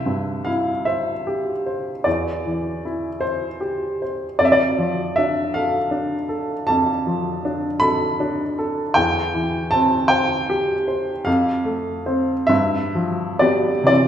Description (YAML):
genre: classical, romantic nocturne for solo piano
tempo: 40-54 BPM (dotted quarters)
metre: 12/8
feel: rubato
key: C major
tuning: A4 = 443 Hz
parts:
  - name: clear upright piano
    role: solo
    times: 0.0-14.1 s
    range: C2 to B5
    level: -18 LUFS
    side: equal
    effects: none
room: wet recital hall reverb, RT60 1.5 s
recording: heard from further back in the room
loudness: -18 LUFS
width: side -9 dB against mid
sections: 0.0-14.1 A section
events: none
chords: 0.0 C; 2.1 C/E; 4.4 Dm/F; 9.0 C/E; 11.3 F; 12.5 G7